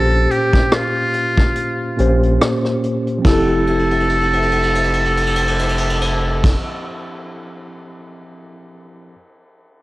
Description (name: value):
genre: lo-fi hip hop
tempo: 71 BPM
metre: 4/4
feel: swing 56% on 16ths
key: F major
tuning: A4 = 439 Hz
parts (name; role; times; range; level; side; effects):
- trumpet with metal mute; melody; 0.0-6.6 s; F4 to A4; -20 LUFS; equal; cassette tape, tape echo
- mellow tine electric piano; accompaniment; 0.0-9.2 s; Bb2 to C5; -21 LUFS; equal; medium stereo tremolo, cassette tape
- soft dub sub bass; bass; 0.0-6.6 s; F1 to Bb1; -19 LUFS; equal; none
- vintage brush drum kit; drums; 0.3-8.1 s; crash cymbal, hi-hat, kick drum, ride cymbal, rim click; -19 LUFS; equal; cassette tape
room: small room ambience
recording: home recording on cassette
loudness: -14 LUFS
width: side -19 dB against mid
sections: 0.0-3.2 A section; 3.2-6.6 B section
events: kick muted 1.6-3.2; drum fill 3.7-6.4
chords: 0.0 Bbm6; 3.2 Fmaj7